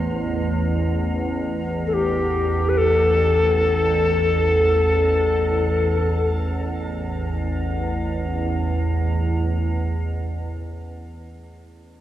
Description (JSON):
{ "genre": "world meditative, free-time meditation music", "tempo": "free time", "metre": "none", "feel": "none", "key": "unclear", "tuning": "A4 = 440 Hz", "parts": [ { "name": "icy glass pad", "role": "drone", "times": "0.0-11.4 s", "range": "A1 to E2", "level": "-22 LUFS", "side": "right 1 dB", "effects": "chorus, built-in reverb, cassette tape" }, { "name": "bright reedy Native American-style cedar flute", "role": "melody", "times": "1.9-6.3 s", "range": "G4 to B4", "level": "-20 LUFS", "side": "left 2 dB", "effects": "cassette tape, shimmer reverb" } ], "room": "wet lush hall reverb, RT60 2.7 s", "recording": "home recording on cassette", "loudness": "-19 LUFS", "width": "side -12 dB against mid", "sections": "0.0-6.5 A section; 6.5-10.8 B section", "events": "none", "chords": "none" }